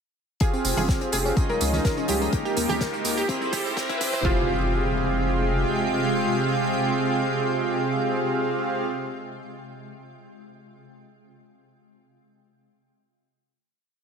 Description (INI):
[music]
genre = progressive house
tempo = 125 BPM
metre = 4/4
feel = straight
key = F minor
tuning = A4 = 444 Hz
[part]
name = shimmering ambient pad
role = sustained chords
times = 1.2-8.8 s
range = C3 to G5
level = -29 LUFS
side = right 1 dB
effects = chorus, built-in reverb, sidechain pumping
[part]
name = analog pluck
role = arpeggios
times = 0.4-8.9 s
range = Bb3 to Bb4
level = -28 LUFS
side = equal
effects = chorus, sidechain pumping, ping-pong delay
[part]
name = soft supersaw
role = stabs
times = 0.4-8.8 s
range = C4 to F5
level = -26 LUFS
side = right 1 dB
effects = sidechain pumping, ping-pong delay
[part]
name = crisp fusion drum kit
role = drums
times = 0.4-4.2 s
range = hi-hat, snare drum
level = -36 LUFS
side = left 4 dB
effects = sidechain pumping on hats, high-pass filter on hats, high-pass filter on snare, high-pass filter on room
[part]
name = electronic kick drum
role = drums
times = 0.4-4.3 s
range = none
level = -24 LUFS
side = equal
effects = none
[part]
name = electronic tambourine and hi-hat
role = drums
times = 0.4-4.2 s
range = none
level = -32 LUFS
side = right 5 dB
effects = overdrive, sidechain pumping on perc, sidechain pumping on hats
[part]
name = riser and impact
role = sound effects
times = 2.4-8.9 s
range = none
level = -35 LUFS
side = left 1 dB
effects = none
[part]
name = round analog bass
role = bass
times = 0.6-5.6 s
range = F1 to Eb2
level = -28 LUFS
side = equal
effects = sidechain pumping
[part]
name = congas and bongos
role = percussion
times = 0.8-4.1 s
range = none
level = -34 LUFS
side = right 3 dB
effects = sidechain pumping on perc
[sound]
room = light reverb, small room ambience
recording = high-pass filter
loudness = -22 LUFS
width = side -6 dB against mid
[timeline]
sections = 0.4-4.2 build; 4.2-8.1 final chord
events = build-up 0.4-4.2; filter sweep 0.4-4.2; drum fill 2.3-4.2; riser 2.4-4.2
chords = 0.4 Fmadd9; 1.4 Dbadd9; 2.3 Eb; 3.3 C; 4.2 Fmadd9